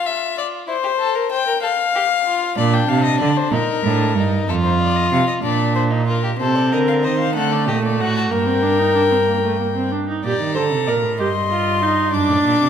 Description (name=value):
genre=classical, baroque-style fugue for string quartet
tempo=63 BPM (dotted quarters)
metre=6/8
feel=straight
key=Bb major, G minor from 6.4 s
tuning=A4 = 441 Hz
part: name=warm violin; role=melody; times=0.0-12.7 s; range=A4 to D6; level=-22 LUFS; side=left 8 dB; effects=none
part: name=warm violin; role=second line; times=0.0-12.7 s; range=D4 to Eb5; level=-22 LUFS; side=left 3 dB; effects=none
part: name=rich cello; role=bass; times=2.6-12.7 s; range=F2 to Eb3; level=-20 LUFS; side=right 5 dB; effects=none
part: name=rich viola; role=accompaniment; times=6.4-12.7 s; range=A3 to Bb4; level=-20 LUFS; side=right 2 dB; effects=none
room=moderate concert hall reverb, RT60 1.8 s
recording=none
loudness=-16 LUFS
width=side -8 dB against mid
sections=0.0-6.4 A section; 6.4-10.2 B section; 10.2-12.7 C section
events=none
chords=0.0 Dmadd9/F (rootless); 0.7 C7(no3); 1.6 N.C.; 2.6 Bb; 3.5 Ebmaj7#11; 4.5 F7(no3); 5.4 Bb; 6.4 Cm; 7.4 D; 8.3 Gm; 10.2 Gm/Bb (rootless); 11.2 Cmadd11/G; 12.1 D/F#